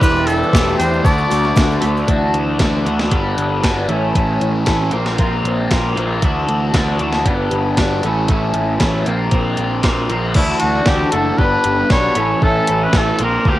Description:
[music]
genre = indie rock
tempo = 116 BPM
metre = 4/4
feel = straight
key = D major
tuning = A4 = 437 Hz
[part]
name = clear trumpet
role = melody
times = 0.0-1.8, 10.4-13.6 s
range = E4 to D5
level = -19 LUFS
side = equal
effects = cassette tape
[part]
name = raw garage guitar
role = riff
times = 0.0-13.6 s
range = A2 to B4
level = -20 LUFS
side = left 4 dB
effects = overdrive, phaser, cassette tape
[part]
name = twelve-string electric guitar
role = riff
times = 0.0-13.6 s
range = E3 to G4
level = -22 LUFS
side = right 5 dB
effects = wide subtle chorus, cassette tape
[part]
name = fuzz picked electric bass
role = bass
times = 0.0-13.6 s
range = E1 to E2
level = -20 LUFS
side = equal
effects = overdrive
[part]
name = gated 80s digital drum machine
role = drums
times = 0.0-13.6 s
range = crash cymbal, hi-hat, kick drum, snare drum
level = -17 LUFS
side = equal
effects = gated reverb, gated reverb snare, cassette tape
[part]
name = tube shaker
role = percussion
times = 0.0-2.0 s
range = none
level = -38 LUFS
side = right 4 dB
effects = none
[sound]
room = little or no reverb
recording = home recording on cassette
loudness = -14 LUFS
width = side -15 dB against mid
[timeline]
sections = 0.0-2.1 A section; 2.1-10.4 B section; 10.4-13.6 C section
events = break 1.8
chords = 0.0 C6/E; 1.1 D; 2.1 Dadd9; 3.1 G; 3.9 A; 4.9 Bbsus2; 6.2 Dadd9; 7.3 G; 8.0 A; 9.1 Bbsus2; 10.4 Dadd9; 11.4 G; 12.2 A

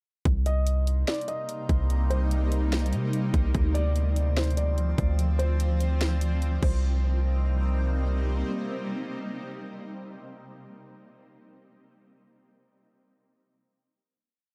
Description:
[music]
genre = hip hop, atmospheric cloud-rap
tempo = 146 BPM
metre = 4/4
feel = half-time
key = C minor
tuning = A4 = 440 Hz
[part]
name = shimmering ambient pad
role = sustained chords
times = 1.0-10.1 s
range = C3 to Eb4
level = -36 LUFS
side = equal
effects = chorus, built-in reverb, phaser, sidechain pumping
[part]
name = long sustained 808-style bass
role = bass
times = 0.3-8.4 s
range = C2 to C3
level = -27 LUFS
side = equal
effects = none
[part]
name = trap drum kit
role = drums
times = 0.3-6.7 s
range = crash cymbal, hi-hat, kick drum, snare drum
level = -31 LUFS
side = equal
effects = overdrive
[part]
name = drifting glass-harmonics texture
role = texture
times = 0.8-10.1 s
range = Bb3 to Eb5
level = -45 LUFS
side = equal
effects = chorus, built-in reverb
[part]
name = felt-muted upright piano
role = melody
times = 0.5-8.0 s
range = C5 to Eb5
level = -38 LUFS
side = equal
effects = tape echo
[sound]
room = little or no reverb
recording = dark, warm production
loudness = -26 LUFS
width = mono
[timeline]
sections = 0.3-6.8 verse; 6.8-10.1 final hit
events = none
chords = 0.3 Cm7; 3.5 Dm7; 6.6 Cm7

